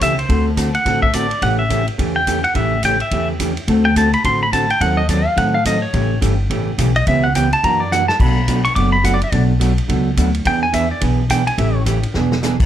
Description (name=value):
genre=country, western swing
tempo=212 BPM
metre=4/4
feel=swing 61% on 8ths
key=A mixolydian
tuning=A4 = 440 Hz
part: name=pedal steel guitar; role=melody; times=0.0-11.8 s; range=C5 to D6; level=-18 LUFS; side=equal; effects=none
part: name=vintage hollow-body jazz guitar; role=accompaniment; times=0.0-12.5 s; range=B2 to A4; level=-20 LUFS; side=right 3 dB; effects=none
part: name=upright bass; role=bass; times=0.0-12.6 s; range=E1 to A2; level=-18 LUFS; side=left 1 dB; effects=none
part: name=vintage drum kit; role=drums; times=0.0-12.7 s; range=crash cymbal, hi-hat, kick drum, ride cymbal, snare drum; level=-24 LUFS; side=equal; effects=none
room=moderate club reverb, RT60 0.7 s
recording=none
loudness=-14 LUFS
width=side -11 dB against mid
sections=0.0-12.7 A section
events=pedal steel guitar solo 0.0-12.7; drum fill 7.9, 12.1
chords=0.3 D7; 1.4 A7; 3.7 D7; 4.8 D#dim7; 5.9 A7; 7.1 C#m7b5; 7.6 F#aug7; 8.2 Bm7; 10.5 E7; 11.6 A7; 12.1 E7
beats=0.01 | 0.29 0.57 0.86 1.14 | 1.42 1.70 1.99 2.27 | 2.55 2.83 3.12 3.40 | 3.68 3.96 4.25 4.53 | 4.81 5.09 5.37 5.66 | 5.94 6.22 6.50 6.79 | 7.07 7.35 7.63 7.91 | 8.20 8.48 8.76 9.04 | 9.33 9.61 9.89 10.17 | 10.46 10.74 11.02 11.30 | 11.59 11.87 12.15 12.43